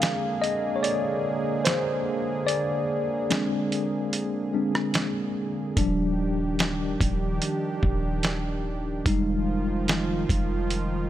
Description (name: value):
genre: contemporary R&B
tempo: 73 BPM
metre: 4/4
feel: straight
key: unclear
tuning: A4 = 436 Hz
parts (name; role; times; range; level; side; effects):
- tine electric piano; accompaniment; 0.0-11.1 s; F3 to F5; -27 LUFS; left 2 dB; medium stereo tremolo
- warm analog pad; sustained chords; 0.0-11.1 s; D3 to Ab4; -30 LUFS; right 3 dB; chorus, sidechain pumping
- dusty soul sampler-style drum kit; drums; 0.0-10.9 s; hi-hat, kick drum, rim click, snare drum; -27 LUFS; right 1 dB; none
- warm 808-style bass; bass; 5.8-11.1 s; Eb1 to F1; -29 LUFS; equal; none
room: light reverb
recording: none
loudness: -24 LUFS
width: side -12 dB against mid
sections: 0.0-11.1 A section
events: break 0.0-5.8; tine electric piano solo 0.0-11.1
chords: 0.0 Bb7; 5.8 Ebmaj7; 9.1 Fm7